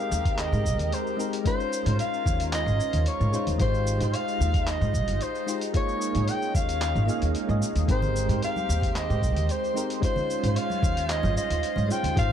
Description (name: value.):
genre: sunset chillout.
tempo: 112 BPM.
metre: 4/4.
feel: straight.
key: unclear.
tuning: A4 = 439 Hz.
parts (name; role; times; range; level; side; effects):
dark soprano saxophone; melody; 0.0-12.3 s; C5 to G5; -30 LUFS; left 1 dB; tape echo.
soft electric-piano-like synth keys; accompaniment; 0.0-12.3 s; Ab3 to F5; -32 LUFS; moving between left 5 dB and right 7 dB; chorus, auto-pan, digital delay.
lush unison pad; sustained chords; 0.0-12.3 s; Ab3 to C5; -35 LUFS; right 1 dB; chorus, phaser.
upright bass; bass; 0.1-12.3 s; Ab1 to Ab2; -26 LUFS; equal; none.
dusty soul sampler-style drum kit; drums; 0.1-12.3 s; handclaps, hi-hat, shaker; -36 LUFS; equal; none.
electronic kick drum; drums; 0.3-12.3 s; none; -26 LUFS; equal; none.
congas; percussion; 8.0-12.1 s; none; -35 LUFS; right 3 dB; none.
room: little or no reverb.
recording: dark, warm production.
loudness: -23 LUFS.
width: side -9 dB against mid.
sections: 0.0-12.3 A section.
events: none.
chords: 0.0 Abmaj9; 1.5 Dbmaj9; 3.6 Fm9/Ab; 5.7 Eb9sus4; 7.9 Abmaj9; 10.0 Dbmaj9.